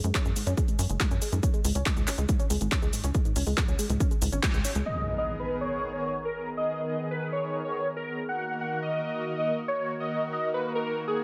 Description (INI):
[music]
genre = uplifting trance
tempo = 140 BPM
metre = 4/4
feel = straight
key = G# minor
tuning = A4 = 443 Hz
[part]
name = tight sequenced synth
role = arpeggios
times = 0.0-4.8 s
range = G#2 to C#4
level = -36 LUFS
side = equal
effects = chorus, phaser, sidechain pumping, delay
[part]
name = tight sequencer bass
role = bass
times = 0.0-4.8 s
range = F#1 to F#2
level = -30 LUFS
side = equal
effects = sidechain pumping
[part]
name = punchy analog drum machine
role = drums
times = 0.0-4.8 s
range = handclaps, hi-hat, shaker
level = -34 LUFS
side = equal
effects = overdrive, low-pass filter on hats, low-pass filter on perc, low-pass filter on snare
[part]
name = electronic kick drum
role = drums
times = 0.1-4.5 s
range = none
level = -29 LUFS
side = equal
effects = none
[part]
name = supersaw chords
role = melody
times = 4.9-11.2 s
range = G#4 to F#5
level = -32 LUFS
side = equal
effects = analog chorus, sidechain pumping, low-pass filter, delay
[part]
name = lush unison pad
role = sustained chords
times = 4.9-11.2 s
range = D#3 to A#4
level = -35 LUFS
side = equal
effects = chorus, sidechain pumping
[part]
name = impact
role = sound effects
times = 4.9-6.6 s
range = none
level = -39 LUFS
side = equal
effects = none
[sound]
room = light reverb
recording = none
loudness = -29 LUFS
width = mono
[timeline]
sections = 0.0-4.9 A section; 4.9-11.2 B section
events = band accent 4.4; impact 4.9-6.6; filter sweep on supersaw synth 4.9-11.2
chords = 0.0 F#5; 1.4 C#5; 4.9 G#madd9; 8.3 D#m